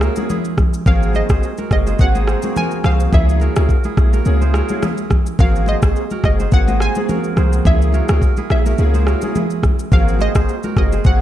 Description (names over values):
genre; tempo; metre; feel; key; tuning
afrobeats; 106 BPM; 4/4; swing 55% on 16ths; Ab mixolydian; A4 = 440 Hz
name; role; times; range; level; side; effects
analog pluck; melody; 0.0-11.2 s; Eb5 to Ab5; -25 LUFS; right 1 dB; chorus, analog delay
warm grand piano; accompaniment; 0.0-11.2 s; Bb3 to Ab4; -23 LUFS; equal; ensemble chorus
kora; riff; 0.0-11.2 s; Fb4 to Eb5; -27 LUFS; right 7 dB; analog delay
warm 808-style bass; bass; 0.0-11.2 s; Gb1 to Db2; -16 LUFS; equal; none
afro-pop drum kit; drums; 0.0-11.2 s; kick drum, rim click, shaker; -16 LUFS; equal; none
congas; percussion; 0.2-11.0 s; none; -24 LUFS; equal; none
room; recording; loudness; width
light reverb; none; -13 LUFS; side -12 dB against mid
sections
0.0-11.2 A section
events
none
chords
0.0 Dbm6; 0.9 Ab9; 3.1 Dbm6; 5.4 Ab9; 7.7 Dbm6; 9.9 Ab9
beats
0.30 | 0.86 1.43 1.99 2.56 | 3.13 3.69 4.26 4.82 | 5.39 5.96 6.52 7.09 | 7.65 8.22 8.79 9.35 | 9.92 10.48 11.05